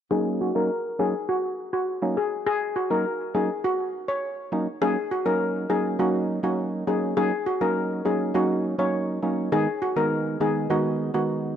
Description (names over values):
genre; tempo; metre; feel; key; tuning
dancehall; 102 BPM; 4/4; straight; Eb minor; A4 = 440 Hz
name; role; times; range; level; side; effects
steel pan; melody; 0.1-11.3 s; Gb4 to Db5; -25 LUFS; left 2 dB; low-pass filter
percussive organ stab; accompaniment; 0.1-11.5 s; Eb3 to Eb4; -26 LUFS; right 2 dB; chorus, low-pass filter
room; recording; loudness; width
light reverb, small room ambience; dry, gritty hardware recording, cassette tape; -23 LUFS; side -9 dB against mid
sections
0.1-4.8 A section; 4.8-11.6 B section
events
filter sweep 0.1-4.8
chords
0.1 Ebm7; 9.5 Abm